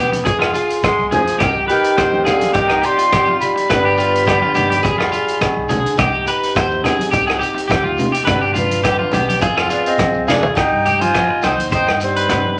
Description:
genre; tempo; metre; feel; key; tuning
highlife guitar band; 105 BPM; 4/4; swing 53% on 16ths; C harmonic minor; A4 = 440 Hz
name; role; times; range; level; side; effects
picked old ladder-braced acoustic guitar; accompaniment; 0.0-12.6 s; G2 to B4; -24 LUFS; equal; none
electric guitar at the edge of break-up; arpeggios; 0.0-12.6 s; Eb4 to C5; -22 LUFS; equal; vibrato effect
fingered electric bass; bass; 0.0-12.6 s; E1 to C3; -30 LUFS; equal; none
vintage drum kit; drums; 0.1-12.4 s; hi-hat, kick drum, rim click, snare drum, toms; -24 LUFS; equal; none
congas; percussion; 0.1-12.6 s; none; -27 LUFS; equal; none
shekere; percussion; 0.1-12.4 s; none; -33 LUFS; equal; none
agogo bells; percussion; 0.4-12.4 s; none; -30 LUFS; equal; none
concert flute; melody; 0.8-5.7, 9.7-12.6 s; C5 to C6; -21 LUFS; equal; none
growling tenor saxophone; second line; 0.8-5.7, 9.7-12.6 s; D3 to F4; -25 LUFS; equal; none
room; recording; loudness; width
moderate large studio reverb, RT60 0.8 s; nothing above 10.5 kHz; -16 LUFS; mono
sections
0.0-10.6 A section; 10.6-12.6 B section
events
drum fill 10.3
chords
0.3 Fm; 1.4 Cm; 3.7 G; 4.8 Fm; 6.0 Cm; 8.3 G; 9.4 Fm; 10.6 Cm

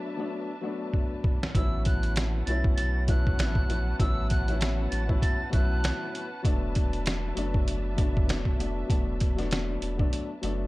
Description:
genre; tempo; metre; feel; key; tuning
hip hop, boom-bap hip-hop; 98 BPM; 4/4; swing 59% on 16ths; A major; A4 = 441 Hz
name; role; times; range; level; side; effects
dark upright piano; accompaniment; 0.0-10.7 s; A2 to E4; -33 LUFS; left 3 dB; cassette tape, high-pass filter, low-pass filter
muted studio string section; sustained chords; 0.0-10.7 s; C#4 to A5; -41 LUFS; equal; high-pass filter, low-pass filter
trip hop sampler-style drum kit; drums; 0.9-10.6 s; hi-hat, kick drum, snare drum; -27 LUFS; equal; none
warm sub bass; bass; 1.5-10.7 s; E1 to B1; -30 LUFS; equal; none
jazz flute; melody; 1.6-6.4 s; E6 to A6; -36 LUFS; right 1 dB; high-pass filter, low-pass filter, tape echo
room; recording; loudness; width
small room ambience; dark, warm production; -25 LUFS; side -20 dB against mid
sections
0.0-10.7 A section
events
drum fill 0.9-1.6; break 10.1-10.7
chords
0.0 E7sus4; 1.6 A69; 6.4 E7sus4

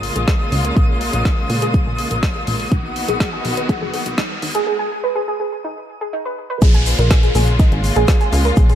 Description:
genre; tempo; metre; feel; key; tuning
progressive house; 123 BPM; 4/4; straight; unclear; A4 = 444 Hz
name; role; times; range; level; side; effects
clear studio string section; sustained chords; 0.0-8.8 s; C#3 to F#4; -24 LUFS; left 1 dB; sidechain pumping
plucky analog bass; bass; 0.0-8.8 s; F#1 to A#2; -20 LUFS; equal; tube saturation, sidechain pumping
deep house drum kit; drums; 0.0-8.8 s; crash cymbal, hi-hat, snare drum; -27 LUFS; equal; high-pass filter on hats, high-pass filter on snare, high-pass filter on cymbals
riser and downlifter; sound effects; 1.8-8.8 s; none; -30 LUFS; equal; none
twinkling granular texture; texture; 0.0-4.7 s; D#6; -28 LUFS; left 1 dB; built-in reverb, sidechain pumping
soft round pluck; arpeggios; 0.2-8.7 s; D#4 to G#5; -23 LUFS; right 2 dB; wide subtle chorus, sidechain pumping, ping-pong delay
electronic kick drum; drums; 0.3-8.7 s; none; -15 LUFS; equal; none
tube shaker; percussion; 6.6-8.8 s; none; -34 LUFS; left 4 dB; none
room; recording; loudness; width
light reverb, digital ambience; high-pass filter; -15 LUFS; side -10 dB against mid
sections
0.0-6.6 A section; 6.6-8.8 B section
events
build-up 0.0-6.6; filter sweep on synth pluck 0.0-6.6; filter sweep 0.0-6.6; riser 1.8-4.7; break 4.7-6.6; drop 6.6-8.8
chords
0.0 A#m7; 2.7 Bmaj7; 6.6 A#m7

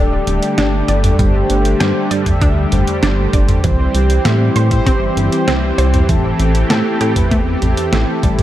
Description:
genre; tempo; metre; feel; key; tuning
synthwave; 98 BPM; 4/4; straight; unclear; A4 = 440 Hz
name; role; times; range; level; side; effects
warm analog pad; sustained chords; 0.0-8.4 s; D3 to G4; -20 LUFS; equal; chorus, sidechain pumping
analog pluck; arpeggios; 0.0-8.4 s; E3 to G5; -23 LUFS; right 1 dB; chorus, tape echo
mellow synth brass; stabs; 0.0-8.4 s; C4 to E5; -20 LUFS; left 1 dB; chorus, tape echo
chorused synth bass; bass; 0.0-8.4 s; D1 to A2; -16 LUFS; equal; tube saturation
detuned 8-bit digital drum machine; drums; 0.3-8.4 s; hi-hat, snare drum, toms; -20 LUFS; equal; small room ambience
electronic kick drum; drums; 1.2-8.4 s; none; -16 LUFS; equal; small room ambience
room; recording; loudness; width
light reverb, digital ambience; dark, warm production; -12 LUFS; side -13 dB against mid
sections
0.0-8.4 A section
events
none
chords
0.0 Gsus2; 3.6 C; 6.1 Am7

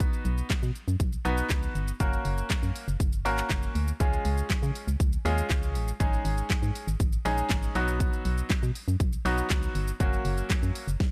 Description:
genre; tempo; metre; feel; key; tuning
dance-pop; 120 BPM; 4/4; straight; unclear; A4 = 440 Hz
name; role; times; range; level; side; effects
bright grand piano; accompaniment; 0.0-10.9 s; Gb3 to Cb5; -34 LUFS; equal; sidechain pumping
organ-like FM bass; bass; 0.0-11.0 s; Gb1 to Db3; -32 LUFS; equal; sidechain pumping
pop drum kit; drums; 0.0-11.1 s; handclaps, hi-hat, kick drum, shaker, snare drum; -30 LUFS; equal; none
room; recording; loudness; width
little or no reverb; none; -28 LUFS; mono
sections
0.0-11.1 A section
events
none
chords
0.0 Cb; 2.0 Gb; 4.0 Db; 6.0 Absus4; 7.8 Cb; 10.0 Gb

